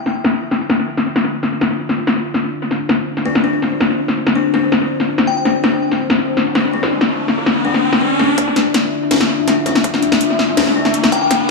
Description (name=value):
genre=half-time drum and bass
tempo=164 BPM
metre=4/4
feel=half-time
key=D minor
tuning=A4 = 440 Hz
part: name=dark analog pad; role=sustained chords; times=0.0-11.5 s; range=D4 to E5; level=-22 LUFS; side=left 3 dB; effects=chorus, vintage 12-bit sampler grit, sidechain pumping
part: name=drum and bass drum kit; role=drums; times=0.1-11.4 s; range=hi-hat, snare drum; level=-16 LUFS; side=left 2 dB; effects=overdrive, low-pass filter on snare, low-pass filter on hats, low-pass filter on perc, low-pass filter on toms, low-pass filter on cymbals, analog delay
part: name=kalimba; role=arpeggios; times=3.3-10.9 s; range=D4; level=-19 LUFS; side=left 2 dB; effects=low-pass filter, analog delay
part: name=glassy synth bell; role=melody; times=5.3-5.4, 11.1-11.3 s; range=G5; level=-23 LUFS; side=left 5 dB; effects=chorus, vintage 12-bit sampler grit, analog delay
part: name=riser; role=sound effects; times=6.3-11.5 s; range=none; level=-22 LUFS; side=equal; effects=none
part: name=electronic kick drum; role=drums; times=8.4-11.4 s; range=none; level=-24 LUFS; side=left 1 dB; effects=overdrive, high-pass filter on kick
room=wet echo chamber reverb, RT60 1.4 s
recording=echo-heavy mix, small room ambience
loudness=-13 LUFS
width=side -2 dB against mid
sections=0.0-8.4 A section; 8.4-11.5 B section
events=riser 6.3-8.4, 8.4-11.5; build-up 8.4-11.5; filter sweep on kalimba 8.4-11.5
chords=0.0 Dmadd9